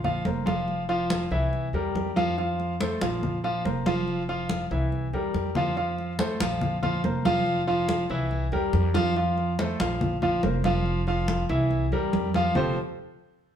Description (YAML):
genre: latin, Cuban son and guajira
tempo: 141 BPM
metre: 4/4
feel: straight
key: F major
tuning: A4 = 438 Hz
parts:
  - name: warm concert grand piano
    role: arpeggios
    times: 0.0-12.8 s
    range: E3 to F5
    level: -26 LUFS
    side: equal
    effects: none
  - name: upright bass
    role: bass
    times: 0.0-12.8 s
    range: F1 to F2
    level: -30 LUFS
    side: equal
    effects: none
  - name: congas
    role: percussion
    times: 0.0-12.7 s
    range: none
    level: -30 LUFS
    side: equal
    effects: none
room: wet large studio reverb, RT60 1.0 s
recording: band playing live in one room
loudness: -23 LUFS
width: side -9 dB against mid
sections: 0.0-5.8 A section; 5.8-12.6 B section; 12.6-13.6 C section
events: drum fill 5.3-5.8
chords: 0.0 Bbsus2; 0.7 F5; 1.5 C7; 2.4 F; 3.2 Bbsus2; 4.1 F5; 4.9 C7; 5.8 F; 6.6 Bbsus2; 7.5 F5; 8.3 C7; 9.2 F; 10.0 Bbsus2; 10.9 F5; 11.7 C7; 12.6 Fadd9